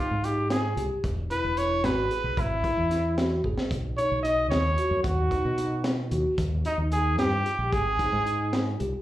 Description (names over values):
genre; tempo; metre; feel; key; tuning
progressive instrumental, band music in an uneven meter; 224 BPM (eighths); 5/8; straight; unclear; A4 = 442 Hz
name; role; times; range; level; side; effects
warm trumpet; melody; 0.0-8.8 s; Eb4 to D#5; -27 LUFS; right 1 dB; slapback echo
tine electric piano; arpeggios; 0.0-9.0 s; Eb4 to G#4; -32 LUFS; left 1 dB; medium tremolo, slapback echo, digital delay
overdriven fingered electric bass; bass; 0.1-8.9 s; E1 to B2; -29 LUFS; equal; none
crunchy breakbeat drum kit; drums; 0.2-8.9 s; hi-hat, kick drum, snare drum; -31 LUFS; equal; slapback echo
warm flugelhorn; second line; 4.0-8.8 s; Eb4 to D#5; -34 LUFS; left 4 dB; none
room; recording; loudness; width
light reverb; live gig heard through the venue's PA, club reverb; -24 LUFS; side -14 dB against mid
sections
0.0-9.0 A section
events
drum fill 3.4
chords
0.0 Ab5; 1.0 E; 3.7 B; 6.4 Eb; 7.7 Ab5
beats
0.24 0.51 0.77 | 1.04 1.31 1.57 1.84 2.11 | 2.38 2.64 2.91 3.18 3.44 | 3.71 3.98 4.25 4.51 4.78 | 5.05 5.32 5.58 5.85 6.12 | 6.39 6.65 6.92 7.19 7.46 | 7.72 7.99 8.26 8.53 8.79